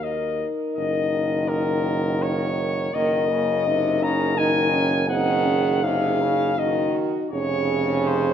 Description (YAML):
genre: classical, hymn-like piece for brass band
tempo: 82 BPM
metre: 3/4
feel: uneven beats, rubato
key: unclear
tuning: A4 = 439 Hz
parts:
  - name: warm flugelhorn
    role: melody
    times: 0.0-8.3 s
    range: Bb4 to Bb5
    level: -24 LUFS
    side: left 4 dB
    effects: none
  - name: mellow French horn section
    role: second line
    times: 0.0-8.3 s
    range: Gb4 to Bb4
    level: -27 LUFS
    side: right 3 dB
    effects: none
  - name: clear trombone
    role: accompaniment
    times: 0.0-8.3 s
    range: C3 to Gb3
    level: -29 LUFS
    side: right 5 dB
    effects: none
  - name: dark euphonium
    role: accompaniment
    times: 0.0-8.3 s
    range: Bb3 to Eb4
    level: -28 LUFS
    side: left 2 dB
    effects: none
  - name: warm tuba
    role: bass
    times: 0.0-8.3 s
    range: F1 to Eb2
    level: -27 LUFS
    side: equal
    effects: none
room: moderate scoring stage reverb, RT60 1.7 s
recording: none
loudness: -20 LUFS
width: side -8 dB against mid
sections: 0.0-8.3 A section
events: none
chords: 0.0 Ebm; 0.8 Ebm/Gb; 2.9 Ebm7/Gb; 5.1 Ab7/Gb; 7.3 Db/F